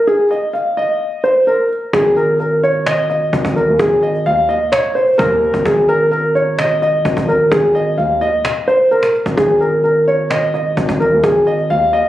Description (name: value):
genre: hip hop, trap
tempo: 129 BPM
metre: 4/4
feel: half-time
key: Ab major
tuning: A4 = 436 Hz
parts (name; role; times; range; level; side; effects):
- dark concert grand piano; melody; 0.0-12.1 s; Ab4 to F5; -13 LUFS; equal; ping-pong delay
- distorted 808-style bass; bass; 1.9-12.0 s; Ab1 to Eb2; -20 LUFS; equal; distortion
- cajon; drums; 1.9-12.0 s; none; -23 LUFS; equal; vintage 12-bit sampler grit
room: light reverb, small room ambience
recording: recorded on a phone in the room, club reverb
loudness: -12 LUFS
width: side -14 dB against mid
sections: 0.0-1.9 A section; 1.9-12.1 B section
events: none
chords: 0.0 N.C.; 1.9 Ab5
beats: | 0.07 0.54 1.00 1.47 | 1.93 2.40 2.86 3.33 | 3.79 4.26 4.72 5.19 | 5.66 6.12 6.58 7.05 | 7.51 7.98 8.45 8.91 | 9.38 9.84 10.31 10.77 | 11.24 11.70